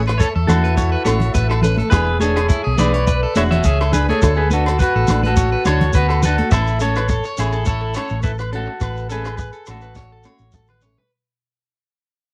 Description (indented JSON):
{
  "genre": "highlife guitar band",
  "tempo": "105 BPM",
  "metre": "4/4",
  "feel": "straight",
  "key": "A major",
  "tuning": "A4 = 442 Hz",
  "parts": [
    { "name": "breathy trumpet", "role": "second line", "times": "0.0-6.1 s", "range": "E4 to C#5", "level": "-28 LUFS", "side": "equal", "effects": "none" },
    { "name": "flamenco guitar", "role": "accompaniment", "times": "0.0-11.0 s", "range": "E3 to A4", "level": "-28 LUFS", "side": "equal", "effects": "none" },
    { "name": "bright tonewheel organ", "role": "sustained chords", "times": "0.0-6.5 s", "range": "E5 to C#6", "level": "-39 LUFS", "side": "equal", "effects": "none" },
    { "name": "electric guitar at the edge of break-up", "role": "arpeggios", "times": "0.0-11.1 s", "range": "E4 to E5", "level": "-28 LUFS", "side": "equal", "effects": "slapback echo" },
    { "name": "hollow-body short-scale fingered electric bass", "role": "bass", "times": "0.0-11.0 s", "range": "E1 to E2", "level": "-22 LUFS", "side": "equal", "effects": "none" },
    { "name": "compact cocktail drum kit", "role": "drums", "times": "0.1-11.1 s", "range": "crash cymbal, hi-hat, kick drum, rim click, snare drum, toms", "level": "-22 LUFS", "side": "equal", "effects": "none" },
    { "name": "agogo bells", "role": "percussion", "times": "0.1-10.8 s", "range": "none", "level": "-33 LUFS", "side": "equal", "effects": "none" },
    { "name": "electric guitar at the edge of break-up", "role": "melody", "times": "0.2-10.8 s", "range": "E4 to E5", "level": "-25 LUFS", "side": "equal", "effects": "none" },
    { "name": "shekere", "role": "percussion", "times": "0.2-11.0 s", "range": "none", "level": "-28 LUFS", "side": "equal", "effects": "none" },
    { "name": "congas", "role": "percussion", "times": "0.5-6.5 s", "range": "none", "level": "-24 LUFS", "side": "equal", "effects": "none" }
  ],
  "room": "little or no reverb",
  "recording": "dry, close 1970s-style studio recording",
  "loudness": "-17 LUFS",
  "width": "mono",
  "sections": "0.0-6.5 A section; 6.5-11.1 B section",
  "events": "fade-out 6.5-11.1; drum fill 10.0-11.1",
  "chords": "0.0 A; 1.9 E7; 4.2 D; 6.5 A"
}